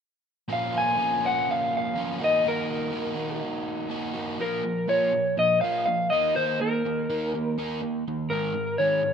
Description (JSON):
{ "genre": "rock", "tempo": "123 BPM", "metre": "4/4", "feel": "straight", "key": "Bb minor", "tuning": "A4 = 440 Hz", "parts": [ { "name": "electric guitar through a small old amp", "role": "melody", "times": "0.5-9.1 s", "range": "Bb4 to Ab5", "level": "-24 LUFS", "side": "left 1 dB", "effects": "spring reverb, digital delay" }, { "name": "crunchy overdriven guitar", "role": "riff", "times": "0.5-9.1 s", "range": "Ab2 to Gb4", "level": "-29 LUFS", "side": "right 2 dB", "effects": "spring reverb" } ], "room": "little or no reverb", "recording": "rough home demo mix", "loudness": "-24 LUFS", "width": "side -7 dB against mid", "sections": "0.5-4.4 A section; 4.4-9.1 B section", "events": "none", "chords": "0.5 Bbm; 2.2 Ebm; 4.4 Bbm; 6.1 Eb5; 8.3 Absus2" }